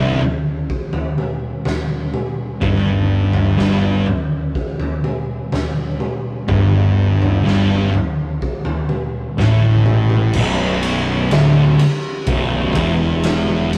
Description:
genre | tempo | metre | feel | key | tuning
stoner and doom metal | 62 BPM | 4/4 | straight | B minor | A4 = 440 Hz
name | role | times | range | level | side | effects
thick fuzz guitar | riff | 0.0-13.8 s | B1 to A2 | -18 LUFS | equal | distortion
thick fuzz guitar | riff | 0.0-10.3 s | C2 to A2 | -24 LUFS | equal | distortion
fuzz fingered electric bass | bass | 0.0-13.8 s | B0 to A1 | -24 LUFS | equal | overdrive, tube saturation
raw garage drum kit | drums | 0.2-13.8 s | crash cymbal, kick drum, ride cymbal, snare drum, toms | -23 LUFS | equal | none
room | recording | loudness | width
light reverb | rough rehearsal-room recording, warm saturation | -17 LUFS | mono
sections
0.0-10.3 A section; 10.3-13.8 B section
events
none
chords
0.0 N.C.; 2.6 Gsus2; 10.3 Bm

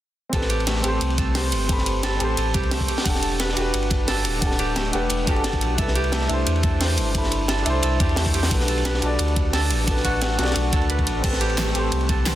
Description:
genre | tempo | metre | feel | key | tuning
liquid drum and bass | 176 BPM | 4/4 | straight | A dorian | A4 = 439 Hz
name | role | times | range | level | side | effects
dark grand piano | accompaniment | 0.3-12.4 s | C4 to B5 | -26 LUFS | equal | digital delay
concert harp | arpeggios | 0.3-12.4 s | A3 to C5 | -28 LUFS | right 2 dB | ping-pong delay
warm sub bass | bass | 0.3-12.4 s | D1 to E2 | -24 LUFS | equal | none
crunchy breakbeat drum kit | drums | 0.3-12.3 s | hi-hat, ride cymbal, snare drum | -28 LUFS | equal | high-pass filter on cymbals, high-pass filter on hats, high-pass filter on snare, high-pass filter on room
electronic kick drum | drums | 0.3-12.2 s | none | -24 LUFS | equal | none
pop drum kit | drums | 0.3-12.3 s | crash cymbal, hi-hat, snare drum | -28 LUFS | right 1 dB | none
room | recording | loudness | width
light reverb, small room ambience | dense, heavily limited modern master | -19 LUFS | side -13 dB against mid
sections
0.3-12.4 A section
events
none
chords
0.3 Am9; 2.9 Em11; 5.8 Cmaj13; 8.5 Bm7; 11.2 Am9

